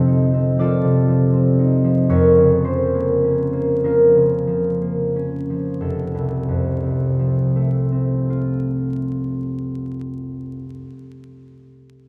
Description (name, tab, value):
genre	classical, solo harp piece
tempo	28-41 BPM (dotted quarters)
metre	6/8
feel	rubato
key	F major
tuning	A4 = 440 Hz
part	concert harp	solo	0.0-11.0 s	F1 to D5	-19 LUFS	equal	none
room	wet church reverb, RT60 3.0 s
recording	dark, warm production, vinyl crackle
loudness	-19 LUFS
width	mono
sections	0.0-5.8 A section; 5.8-9.3 B section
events	slowing down 0.0-5.8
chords	0.0 F7; 2.1 Bbm/F; 5.8 F